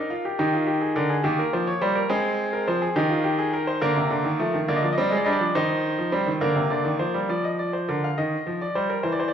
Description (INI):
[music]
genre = classical, baroque-style 3-part fugue for grand piano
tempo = 70 BPM (dotted quarters)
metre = 6/8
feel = straight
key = Eb major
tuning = A4 = 440 Hz
[part]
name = clear baby grand piano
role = solo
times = 0.0-9.3 s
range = C3 to F5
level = -21 LUFS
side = equal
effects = none
[sound]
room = wet stone room reverb, RT60 1.5 s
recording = heard from further back in the room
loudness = -21 LUFS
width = side -8 dB against mid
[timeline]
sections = 0.0-7.3 A section; 7.3-9.3 B section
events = none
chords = 0.4 Eb; 1.2 Eb7; 2.1 Ab; 3.0 Eb; 3.8 Bb; 4.7 Bb7/D; 5.6 Eb; 6.4 Bb; 7.3 Bb/F; 8.2 Eb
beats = | 0.39 1.25 | 2.10 2.96 | 3.82 4.68 | 5.55 6.42 | 7.30 8.18 | 9.04